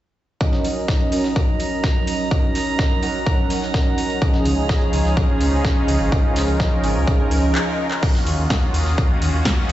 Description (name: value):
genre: progressive house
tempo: 126 BPM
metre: 4/4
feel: straight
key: Eb minor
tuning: A4 = 440 Hz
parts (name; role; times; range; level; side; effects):
- soft supersaw; stabs; 0.4-7.6 s; F3 to Ab5; -22 LUFS; right 2 dB; sidechain pumping, low-pass filter, tape echo
- dusty soul sampler-style drum kit; drums; 0.4-9.7 s; hi-hat, snare drum; -34 LUFS; left 1 dB; sidechain pumping on hats, high-pass filter on hats, small room ambience, high-pass filter on snare
- electronic kick drum; drums; 0.4-9.6 s; none; -19 LUFS; equal; overdrive, small room ambience
- drifting glass-harmonics texture; texture; 0.8-9.7 s; Bb5 to Eb6; -31 LUFS; right 4 dB; chorus, built-in reverb, sidechain pumping
- deep house drum kit; drums; 0.6-9.7 s; crash cymbal, handclaps, hi-hat, snare drum; -28 LUFS; equal; overdrive, small room ambience
- filtered supersaw swell; sustained chords; 4.2-9.7 s; Db3 to Bb4; -26 LUFS; equal; sidechain pumping
- dark detuned saw bass; bass; 4.5-9.7 s; Ab1 to Eb2; -20 LUFS; equal; sidechain pumping
- swell; sound effects; 7.3-8.0 s; none; -32 LUFS; left 1 dB; none
room: light reverb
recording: played on a big sound system in a bare room, large studio reverb, nothing above 7.9 kHz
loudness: -17 LUFS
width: side -14 dB against mid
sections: 0.4-8.0 A section; 8.0-9.7 B section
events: swell 7.3-8.0; break 7.6-8.0; drum fill 7.6-8.0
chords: 0.4 Ebm7; 4.2 Dbadd9; 8.0 Ebm7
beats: | 0.41 0.89 1.36 1.84 | 2.31 2.79 3.27 3.74 | 4.22 4.69 5.17 5.65 | 6.12 6.60 7.08 7.55 | 8.03 8.50 8.98 9.46